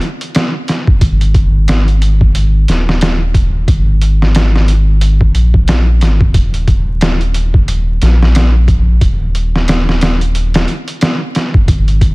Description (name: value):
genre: trip hop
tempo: 90 BPM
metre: 4/4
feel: swing 59% on 16ths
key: unclear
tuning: A4 = 435 Hz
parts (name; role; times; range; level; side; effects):
- trip hop sampler-style drum kit; drums; 0.0-12.1 s; hi-hat, kick drum, snare drum; -13 LUFS; equal; small room ambience
- soft dub sub bass; bass; 1.0-12.1 s; Eb1 to Bb1; -11 LUFS; equal; tube saturation
room: digital ambience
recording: dense, heavily limited modern master, vinyl crackle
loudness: -9 LUFS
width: side -25 dB against mid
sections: 0.0-12.1 A section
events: none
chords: none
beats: 0.34 | 1.01 1.68 2.34 3.01 | 3.67 4.34 5.01 5.67 | 6.34 7.01 7.67 8.34 | 9.01 9.68 10.34 11.01 | 11.68